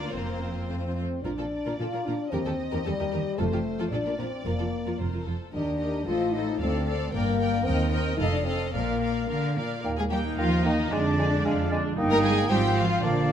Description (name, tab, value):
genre	quick classical-period movement for symphony orchestra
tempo	112 BPM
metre	2/4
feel	rubato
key	Bb major, Eb major from 9.8 s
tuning	A4 = 439 Hz
part	rich studio violin section	melody	0.0-13.3 s	C5 to Bb5	-38 LUFS	left 3 dB	none
part	rich studio violin section	second line	0.0-13.3 s	D4 to Eb5	-33 LUFS	left 2 dB	none
part	rich studio viola section	accompaniment	0.0-13.3 s	F3 to Bb4	-34 LUFS	right 1 dB	none
part	rich studio cello section	bass	0.0-13.3 s	D2 to Bb3	-30 LUFS	right 1 dB	none
part	warm studio double bass section	bass	0.0-13.3 s	F1 to F2	-31 LUFS	right 3 dB	none
part	mellow French horn section	sustained chords	0.7-13.3 s	G3 to F4	-30 LUFS	left 4 dB	none
part	bright silver concert flute	second line	9.8-13.3 s	F5 to Ab5	-35 LUFS	left 2 dB	none
part	mellow clarinet	second line	9.8-13.3 s	D4 to F4	-35 LUFS	left 1 dB	none
part	mellow bassoon	accompaniment	9.8-13.3 s	Ab3 to C4	-32 LUFS	right 2 dB	none
part	warm oboe	second line	10.4-13.3 s	Bb4 to F5	-33 LUFS	right 1 dB	none
room	moderate scoring stage reverb, RT60 1.5 s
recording	none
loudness	-24 LUFS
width	side -9 dB against mid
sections	0.0-1.2 A section; 1.2-9.8 B section; 9.8-13.3 A section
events	none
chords	0.1 Fsus4; 0.7 F; 1.2 Bb; 2.3 Eb; 3.4 F; 3.9 Bb; 4.4 Bb/F; 5.0 F; 5.5 Ebmaj7; 6.1 Adim; 6.6 Dm7; 7.1 Gm; 7.7 Cm7/Eb; 8.2 F7; 8.7 Bb; 9.8 Eb; 10.9 Ddim/F; 12.0 Eb/G; 12.5 Fm/Ab